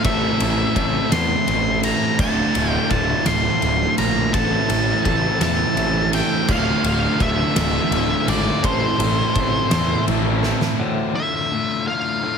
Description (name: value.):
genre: quiet-loud alternative rock.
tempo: 56 BPM (dotted quarters).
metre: 6/8.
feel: straight.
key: D minor.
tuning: A4 = 440 Hz.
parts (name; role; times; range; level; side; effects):
octave-fuzz lead guitar; melody; 0.0-12.4 s; C5 to C6; -23 LUFS; equal; distortion.
crunchy overdriven guitar; riff; 0.0-10.8 s; D2 to A4; -26 LUFS; right 14 dB; none.
sludgy distorted guitar; riff; 0.0-10.8 s; D2 to A4; -25 LUFS; equal; overdrive.
thick fuzz guitar; riff; 0.0-12.4 s; D2 to A4; -25 LUFS; left 10 dB; distortion.
fuzz picked electric bass; bass; 0.0-10.5 s; D1 to E2; -24 LUFS; equal; overdrive.
oversized low-tuned drum kit; drums; 0.0-10.8 s; crash cymbal, kick drum, ride cymbal, snare drum; -24 LUFS; equal; none.
twangy electric guitar; arpeggios; 10.8-12.4 s; D2 to D3; -27 LUFS; equal; tremolo, analog delay.
room: small room ambience.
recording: heavily compressed radio sound.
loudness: -17 LUFS.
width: side -6 dB against mid.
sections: 0.0-10.8 A section; 10.8-12.4 B section.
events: drum fill 10.4-10.8; half time 10.8-12.4.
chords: 0.1 Am; 2.2 Dm; 4.3 Am; 6.5 Dm; 8.6 Am; 10.8 Dm.